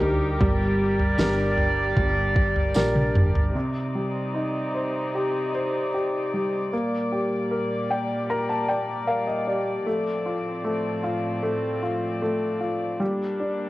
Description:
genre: pop ballad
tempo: 76 BPM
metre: 4/4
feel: straight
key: G minor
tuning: A4 = 440 Hz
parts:
  - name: warm concert grand piano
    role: accompaniment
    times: 0.0-13.7 s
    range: C3 to Bb5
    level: -26 LUFS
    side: left 1 dB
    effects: none
  - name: warm studio string section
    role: sustained chords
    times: 0.0-13.7 s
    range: A2 to D5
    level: -28 LUFS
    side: equal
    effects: none
  - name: woody fretless electric bass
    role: bass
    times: 0.0-3.5 s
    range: G1 to D2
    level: -27 LUFS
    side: equal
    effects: analog chorus
  - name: smooth R&B drum kit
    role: drums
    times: 0.0-3.5 s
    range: kick drum, snare drum, toms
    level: -24 LUFS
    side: right 1 dB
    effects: cassette tape
  - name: tambourine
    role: percussion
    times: 1.2-2.9 s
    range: none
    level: -41 LUFS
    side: right 4 dB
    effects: none
room: light reverb, small room ambience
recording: home recording on cassette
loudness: -22 LUFS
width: side -17 dB against mid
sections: 0.0-3.5 A section; 3.5-13.7 B section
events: drum fill 2.8-3.5; grand piano fill 7.5-9.9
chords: 0.4 Gm; 3.5 Cmadd9; 6.7 Gm/Bb; 9.9 Dm7/A; 13.0 Gm

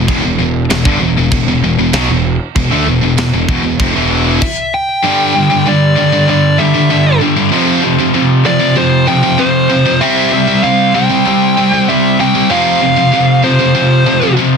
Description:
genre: heavy metal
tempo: 97 BPM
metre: 4/4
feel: straight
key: E phrygian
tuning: A4 = 440 Hz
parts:
  - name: heavy high-gain guitar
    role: riff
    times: 0.0-14.6 s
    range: E2 to C4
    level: -15 LUFS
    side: left 9 dB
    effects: distortion
  - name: heavy high-gain guitar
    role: riff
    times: 0.0-14.6 s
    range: E2 to C4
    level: -15 LUFS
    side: right 10 dB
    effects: distortion
  - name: raw garage guitar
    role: riff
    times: 0.0-14.6 s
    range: E2 to C4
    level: -16 LUFS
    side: equal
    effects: overdrive
  - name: fuzz picked electric bass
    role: bass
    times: 0.0-4.4 s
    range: E1 to D2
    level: -16 LUFS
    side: equal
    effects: overdrive
  - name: tight metal drum kit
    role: drums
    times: 0.1-4.6 s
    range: china cymbal, crash cymbal, kick drum, snare drum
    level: -18 LUFS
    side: right 1 dB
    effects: soft clipping on kick
  - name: high-gain lead guitar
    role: melody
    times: 4.4-14.3 s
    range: C5 to G5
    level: -14 LUFS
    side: equal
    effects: distortion, ping-pong delay
room: light reverb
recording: dense, heavily limited modern master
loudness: -9 LUFS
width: side -6 dB against mid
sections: 0.0-5.0 A section; 5.0-14.6 B section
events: stop 4.4-5.0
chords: 0.0 E5; 5.0 G5; 7.5 F5; 10.0 C; 12.5 F5

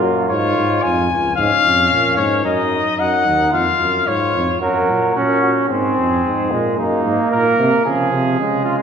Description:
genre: classical, imitative canzona for brass ensemble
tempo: 111 BPM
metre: 4/4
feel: straight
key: unclear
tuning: A4 = 439 Hz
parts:
  - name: clear flugelhorn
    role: second line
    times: 0.0-8.8 s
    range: C#4 to A#4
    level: -20 LUFS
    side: right 2 dB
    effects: none
  - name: brilliant trombone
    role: accompaniment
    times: 0.0-0.3, 4.6-8.8 s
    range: E#3 to C#4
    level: -18 LUFS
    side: right 2 dB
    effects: none
  - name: warm bass trombone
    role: bass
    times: 0.0-8.8 s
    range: C#2 to C#3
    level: -20 LUFS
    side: equal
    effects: none
  - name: clear trumpet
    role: melody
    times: 0.3-4.6 s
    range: C#5 to G#5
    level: -16 LUFS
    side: left 4 dB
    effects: none
room: wet scoring stage reverb, RT60 1.9 s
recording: recorded in a church or concert hall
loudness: -14 LUFS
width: side -7 dB against mid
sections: 0.0-4.6 A section; 4.6-8.8 B section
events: none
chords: 0.3 C#/G#; 1.4 C#; 2.5 D#m; 3.5 C#/E#; 4.6 F#; 5.7 Fm; 6.8 D#m/F#; 7.9 C#

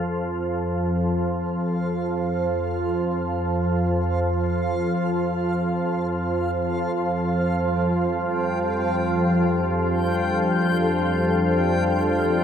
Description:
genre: dark ambient drone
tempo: free time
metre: none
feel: none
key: unclear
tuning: A4 = 440 Hz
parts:
  - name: organ-like drone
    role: drone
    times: 0.0-12.4 s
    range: F2 to F3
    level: -21 LUFS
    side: equal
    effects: ensemble chorus, built-in reverb
  - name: dark analog pad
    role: sustained chords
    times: 2.6-12.4 s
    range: G3 to F5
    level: -29 LUFS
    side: equal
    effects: chorus
  - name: backwards swelling texture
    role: texture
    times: 1.6-12.4 s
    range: F5 to G5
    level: -33 LUFS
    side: left 2 dB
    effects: built-in reverb
room: wet huge ambient reverb, RT60 8.0 s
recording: none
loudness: -21 LUFS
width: side -8 dB against mid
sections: 0.1-12.4 A section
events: fade-in on analog synth pad 0.1-12.4; fade-in on synth texture 0.1-12.4; filter sweep on synth drone 0.1-12.4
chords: 0.1 F5; 7.5 Gsus2

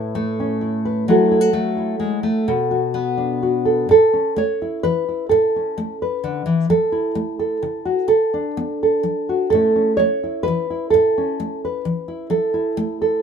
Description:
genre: folk, solo fingerstyle acoustic guitar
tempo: 129 BPM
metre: 3/4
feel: rubato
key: A major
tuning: A4 = 440 Hz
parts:
  - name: nylon-string guitar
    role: solo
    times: 0.0-13.2 s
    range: A2 to C#5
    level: -17 LUFS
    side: right 1 dB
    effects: none
room: light reverb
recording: minimal, uncompressed stereo recording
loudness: -17 LUFS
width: side -7 dB against mid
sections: 0.0-3.9 A section; 3.9-13.2 B section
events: none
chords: 0.0 Aadd9; 1.1 F#m7; 2.5 Bm7; 3.9 Aadd9; 6.7 F#m7; 8.1 Bm7; 9.5 Aadd9; 12.3 F#m7

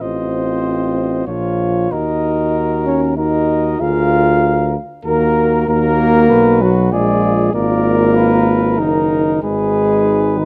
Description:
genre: classical, brass quintet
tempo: 96 BPM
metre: 3/4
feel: straight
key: Bb minor, Eb minor from 5.7 s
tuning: A4 = 439 Hz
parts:
  - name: mellow trumpet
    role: melody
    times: 0.0-10.4 s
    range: Bb4 to Eb5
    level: -25 LUFS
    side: equal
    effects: none
  - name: mellow flugelhorn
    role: second line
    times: 0.0-10.4 s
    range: Eb4 to F5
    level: -23 LUFS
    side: equal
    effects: none
  - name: mellow euphonium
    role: accompaniment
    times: 0.0-10.4 s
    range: Eb3 to F4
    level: -19 LUFS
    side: equal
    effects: none
  - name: warm French horn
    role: accompaniment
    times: 0.0-10.4 s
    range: Eb4 to Ab4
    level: -25 LUFS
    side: equal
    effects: none
  - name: warm tuba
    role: bass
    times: 0.0-10.4 s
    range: Gb1 to Eb2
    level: -21 LUFS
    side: equal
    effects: none
room: light reverb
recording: close, detailed microphones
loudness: -15 LUFS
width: mono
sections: 0.0-10.4 A section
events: none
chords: 0.0 F7/A; 1.3 Bbm; 1.9 Ebm; 3.8 Bb7/D; 5.1 Ebm; 6.9 Bb; 7.5 Bb7/Ab; 8.8 Ebm/Gb; 9.4 Abm

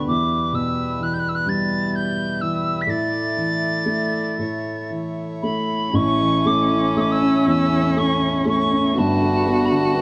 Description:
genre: celtic folk, Celtic slow air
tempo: 38-44 BPM (dotted quarters)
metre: 6/8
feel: rubato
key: unclear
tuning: A4 = 440 Hz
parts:
  - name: mellow tin whistle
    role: melody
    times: 0.0-10.0 s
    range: A5 to B6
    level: -26 LUFS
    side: equal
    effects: none
  - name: dark upright piano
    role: accompaniment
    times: 0.0-10.0 s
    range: G1 to C#4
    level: -24 LUFS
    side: equal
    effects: none
  - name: pedal harmonium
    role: sustained chords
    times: 0.0-10.0 s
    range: G3 to D5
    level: -32 LUFS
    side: equal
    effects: none
  - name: rich cello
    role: second line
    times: 5.9-10.0 s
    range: C#4 to F#4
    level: -24 LUFS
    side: equal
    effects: none
room: moderate recital hall reverb, RT60 1.5 s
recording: close, detailed microphones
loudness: -21 LUFS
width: mono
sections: 0.0-5.9 A section; 5.9-10.0 B section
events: none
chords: 0.1 Em; 2.9 Asus4; 4.4 A; 8.9 Gadd9

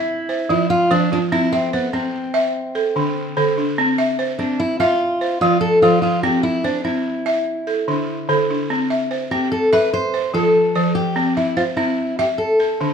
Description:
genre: west african traditional, West African string and xylophone music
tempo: 98 BPM (dotted quarters)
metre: 12/8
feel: straight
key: C major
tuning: A4 = 438 Hz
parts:
  - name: fingerpicked steel-string acoustic guitar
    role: melody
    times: 0.0-12.9 s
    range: B3 to C5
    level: -19 LUFS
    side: equal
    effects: none
  - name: balafon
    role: arpeggios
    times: 0.0-12.9 s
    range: D3 to E5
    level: -19 LUFS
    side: right 1 dB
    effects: none
room: moderate recital hall reverb, RT60 1.4 s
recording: minimal, uncompressed stereo recording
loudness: -16 LUFS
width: side -7 dB against mid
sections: 0.0-12.9 A section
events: none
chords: 0.1 F5; 1.3 C; 2.5 D5; 3.8 C; 5.0 F5; 6.2 C; 7.5 D5; 8.7 C; 9.9 F; 11.2 C; 12.4 D5

